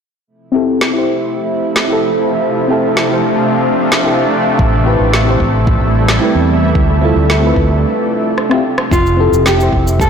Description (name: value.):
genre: sunset chillout.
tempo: 111 BPM.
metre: 4/4.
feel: straight.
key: F lydian.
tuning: A4 = 437 Hz.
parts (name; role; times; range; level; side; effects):
shimmering ambient pad; sustained chords; 1.0-10.1 s; C3 to E5; -15 LUFS; right 1 dB; chorus, built-in reverb.
mellow FM electric piano; accompaniment; 0.5-10.1 s; C4 to C5; -16 LUFS; moving between left 6 dB and right 4 dB; chorus, phaser, auto-pan, low-pass filter, tape echo.
electronic snare drum, rim click and shaker; drums; 0.8-10.1 s; none; -18 LUFS; equal; soft clipping on snare.
fretless electric bass; bass; 4.6-10.1 s; F1 to E2; -14 LUFS; equal; none.
electronic kick drum; drums; 4.6-10.1 s; none; -16 LUFS; equal; none.
nylon-string guitar; melody; 8.9-10.1 s; F4 to A4; -15 LUFS; right 2 dB; tape echo.
room: wet concert hall reverb, RT60 2.0 s, digital ambience.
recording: blown-out, overdriven recording, overdrive.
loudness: -11 LUFS.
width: side -7 dB against mid.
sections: 0.3-8.9 A section; 8.9-10.1 B section.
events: filter sweep on FM electric piano 0.3-8.9; break 7.8-8.9; drum fill 8.4-8.9.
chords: 0.3 Fmaj7; 4.6 Am7; 6.8 Dm7; 8.9 Fmaj7.